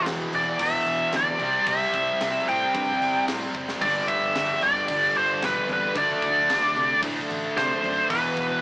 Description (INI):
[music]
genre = hard rock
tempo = 112 BPM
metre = 4/4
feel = straight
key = unclear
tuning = A4 = 440 Hz
[part]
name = biting lead guitar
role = melody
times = 0.0-8.6 s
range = B4 to G5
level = -22 LUFS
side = equal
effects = overdrive
[part]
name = cranked stack guitar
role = riff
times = 0.0-8.6 s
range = E2 to D4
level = -34 LUFS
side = right 1 dB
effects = overdrive
[part]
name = crunchy overdriven guitar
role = riff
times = 0.0-8.6 s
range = E2 to D4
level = -31 LUFS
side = left 1 dB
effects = none
[part]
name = tight distorted guitar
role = riff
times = 0.0-8.6 s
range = E2 to D4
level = -32 LUFS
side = equal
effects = distortion
[part]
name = modern bright picked electric bass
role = bass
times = 0.1-8.5 s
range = E1 to C3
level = -39 LUFS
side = equal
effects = none
[part]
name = tight metal drum kit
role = drums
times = 0.1-8.5 s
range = crash cymbal, kick drum, snare drum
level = -32 LUFS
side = equal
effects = none
[sound]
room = moderate studio reverb, RT60 0.6 s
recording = rough rehearsal-room recording, warm saturation, small speaker sound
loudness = -21 LUFS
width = side -25 dB against mid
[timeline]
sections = 0.0-8.6 A section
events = drum fill 3.5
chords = 0.0 E5; 1.4 C; 3.8 G5; 6.0 D5; 8.1 E5